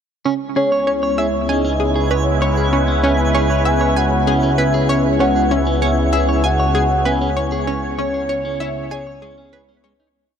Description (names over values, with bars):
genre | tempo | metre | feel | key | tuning
ambient, sequencer-driven space music | 97 BPM | 4/4 | straight | C# minor | A4 = 440 Hz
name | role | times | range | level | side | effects
sweeping resonant pad | sustained chords | 0.3-10.2 s | G#3 to C#5 | -20 LUFS | equal | chorus
clean electric guitar | arpeggios | 0.3-10.1 s | G#3 to C#5 | -26 LUFS | right 2 dB | auto-pan, analog delay
analog pluck | riff | 0.3-10.1 s | C#4 to G#5 | -22 LUFS | right 1 dB | chorus, analog delay
analog drone | bass | 0.3-10.1 s | C#2 | -20 LUFS | equal | chorus
twinkling granular texture | texture | 0.8-10.2 s | G#5 | -29 LUFS | right 2 dB | built-in reverb
soft octave-layered synth lead | melody | 0.6-9.8 s | C#5 to G#5 | -21 LUFS | left 1 dB | chorus, tremolo, analog delay
room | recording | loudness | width
wet huge ambient reverb, RT60 8.2 s | none | -15 LUFS | side -8 dB against mid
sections
0.3-10.2 A section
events
fade-out 6.9-10.2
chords
0.3 C#m7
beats
| 0.26 0.87 1.49 2.11 | 2.73 3.35 3.97 4.58 | 5.20 5.82 6.44 7.06 | 7.68 8.30 8.91 9.53